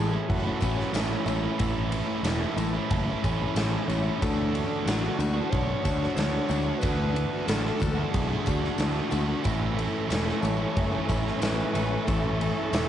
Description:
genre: rock, shoegaze and dream pop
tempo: 92 BPM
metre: 4/4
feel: straight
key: A major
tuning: A4 = 440 Hz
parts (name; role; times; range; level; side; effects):
- clear alto saxophone; melody; 0.0-12.9 s; E4 to C#5; -35 LUFS; left 2 dB; cassette tape, analog delay
- electric guitar through a small old amp; arpeggios; 0.0-12.9 s; E3 to F#4; -36 LUFS; left 9 dB; ensemble chorus, cassette tape, analog delay
- overdriven electric guitar; riff; 0.0-12.9 s; A2 to F#4; -31 LUFS; right 8 dB; reverse reverb, cassette tape
- thick fuzz guitar; riff; 0.0-12.9 s; A2 to D4; -34 LUFS; left 8 dB; distortion, analog chorus, cassette tape
- growling picked electric bass; bass; 0.0-12.9 s; E1 to D2; -29 LUFS; equal; overdrive
- huge arena drum kit; drums; 0.3-12.9 s; kick drum, ride cymbal, snare drum; -30 LUFS; equal; cassette tape
- tambourine; percussion; 0.6-12.9 s; none; -46 LUFS; left 13 dB; none
- airy breathy pad; sustained chords; 9.9-12.9 s; A4 to C#6; -35 LUFS; equal; chorus, cassette tape
room: light reverb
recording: home recording on cassette, nothing above 10.9 kHz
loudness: -24 LUFS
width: side -10 dB against mid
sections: 0.0-12.9 A section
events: none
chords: 0.0 A; 4.2 Dmaj9; 9.4 Amaj7

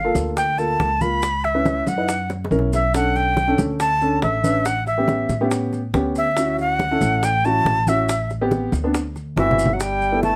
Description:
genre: Afro-Cuban jazz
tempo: 140 BPM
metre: 4/4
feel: straight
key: D major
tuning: A4 = 440 Hz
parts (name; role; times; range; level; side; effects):
- breathy bright jazz flute; melody; 0.0-10.4 s; E5 to B5; -23 LUFS; equal; none
- dark baby grand piano; accompaniment; 0.0-10.4 s; Bb3 to B4; -25 LUFS; equal; none
- upright bass; bass; 0.0-10.4 s; G1 to A2; -27 LUFS; equal; none
- bongos; percussion; 0.2-10.4 s; none; -32 LUFS; equal; none
- congas; percussion; 0.2-10.4 s; none; -28 LUFS; equal; none
- maracas; percussion; 0.2-10.4 s; none; -39 LUFS; equal; none
- brilliant trombone; second line; 9.4-10.4 s; E3 to A3; -28 LUFS; equal; none
room: light reverb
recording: none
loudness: -20 LUFS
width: mono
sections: 0.0-9.8 A section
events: drum fill 2.3-2.9, 9.4-9.8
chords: 0.0 Gm7 (rootless); 1.2 C#m7; 2.1 F#7; 2.9 Bm9; 4.7 A7; 6.4 Dmaj7; 8.1 Am7; 8.9 D7; 9.8 G69

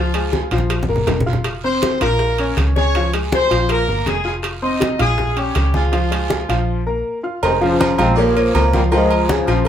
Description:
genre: latin, salsa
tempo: 161 BPM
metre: 4/4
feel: straight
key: unclear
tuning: A4 = 439 Hz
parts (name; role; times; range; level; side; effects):
- bright horn section; melody; 0.0-6.8 s; F3 to Eb5; -20 LUFS; left 1 dB; none
- clear upright piano; accompaniment; 0.0-9.7 s; F3 to F6; -21 LUFS; left 2 dB; none
- vintage muted fingered electric bass; bass; 0.0-9.7 s; F1 to Db2; -20 LUFS; equal; none
- bongos and cowbell; percussion; 0.1-9.7 s; none; -26 LUFS; left 2 dB; none
- congas; percussion; 0.1-9.7 s; none; -23 LUFS; left 1 dB; none
- timbales and agogo bells; percussion; 0.1-9.7 s; none; -25 LUFS; right 5 dB; none
- guiro; percussion; 0.3-9.7 s; none; -34 LUFS; right 5 dB; none
- bright trombone section; melody; 7.4-9.7 s; C3 to C4; -18 LUFS; left 1 dB; none
- clear saxophone section; second line; 7.4-9.5 s; Db3 to G3; -25 LUFS; equal; none
room: wet small room reverb, RT60 0.5 s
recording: band playing live in one room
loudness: -15 LUFS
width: side -9 dB against mid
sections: 0.0-7.4 A section; 7.4-9.7 B section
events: drum fill 0.3-1.5; break 6.7-7.4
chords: 0.0 Db; 0.7 Bb5; 1.5 F5; 2.2 Bbm; 3.7 Bb5; 4.4 Fm7; 5.2 Bbm; 6.7 Bb5; 7.4 Fm7; 8.2 Bbm; 8.9 Dbadd9

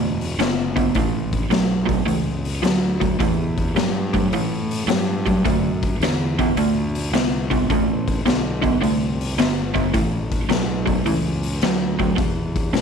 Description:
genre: blues rock power trio and southern rock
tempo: 107 BPM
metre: 4/4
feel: swing 67% on 8ths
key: A mixolydian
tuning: A4 = 440 Hz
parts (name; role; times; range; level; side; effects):
- crunchy overdriven guitar; riff; 0.0-12.8 s; E2 to B3; -21 LUFS; right 2 dB; none
- fuzz fingered electric bass; bass; 0.0-12.8 s; E1 to B2; -25 LUFS; right 1 dB; overdrive
- raw garage drum kit; drums; 0.2-12.8 s; hi-hat, kick drum, snare drum; -24 LUFS; left 3 dB; none
room: light reverb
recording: 1960s-style stereo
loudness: -18 LUFS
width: side -6 dB against mid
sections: 0.0-12.8 A section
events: none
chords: 0.0 D; 1.0 A7; 5.4 D7; 9.9 A; 12.2 E5

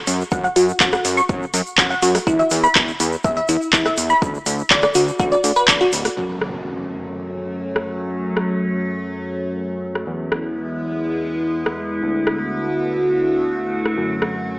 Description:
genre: progressive house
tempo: 123 BPM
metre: 4/4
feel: straight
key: F# minor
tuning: A4 = 435 Hz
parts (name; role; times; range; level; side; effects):
- fat analog bass; bass; 0.1-14.6 s; D1 to F#2; -25 LUFS; equal; sidechain pumping
- deep house drum kit; drums; 0.1-14.3 s; handclaps, hi-hat, rim click; -18 LUFS; equal; overdrive, sidechain pumping on hats, low-pass filter on hats, small room reverb, low-pass filter on snare
- egg shaker; percussion; 0.1-6.1 s; none; -31 LUFS; equal; none
- glassy wavetable pluck; arpeggios; 0.3-5.9 s; E4 to C#6; -18 LUFS; equal; chorus, sidechain pumping, tape echo
- electronic kick drum; drums; 0.3-5.8 s; none; -23 LUFS; equal; overdrive, small room reverb
- evolving wavetable pad; sustained chords; 6.6-14.6 s; D3 to F#4; -22 LUFS; equal; phaser, built-in reverb, sidechain pumping
- impact; sound effects; 6.2-8.1 s; none; -35 LUFS; equal; none
room: moderate lush hall reverb, RT60 1.8 s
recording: small speaker sound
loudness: -17 LUFS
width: side -25 dB against mid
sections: 0.0-6.2 A section; 6.2-14.6 B section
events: impact 6.2-8.1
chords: 0.0 F#5; 2.3 E5; 4.2 N.C.; 6.2 F#m; 10.1 E; 12.0 D6; 14.0 F#m

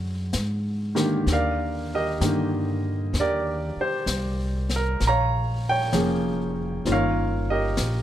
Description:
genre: jazz ballad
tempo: 64 BPM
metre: 4/4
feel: swing 67% on 8ths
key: unclear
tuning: A4 = 439 Hz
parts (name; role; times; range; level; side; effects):
- clear baby grand piano; accompaniment; 0.0-8.0 s; D3 to Bb5; -24 LUFS; right 1 dB; none
- upright bass; bass; 0.0-8.0 s; F1 to G#2; -27 LUFS; equal; none
- vintage brush drum kit; drums; 0.3-8.0 s; brushed snare drum, hi-hat, snare drum; -32 LUFS; left 3 dB; none
room: light reverb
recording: lossy compression artefacts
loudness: -22 LUFS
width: side -11 dB against mid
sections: 0.0-8.0 A section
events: none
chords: 0.0 E13 (rootless); 1.3 Ebmaj7; 5.0 Bbm7; 6.9 Eb7

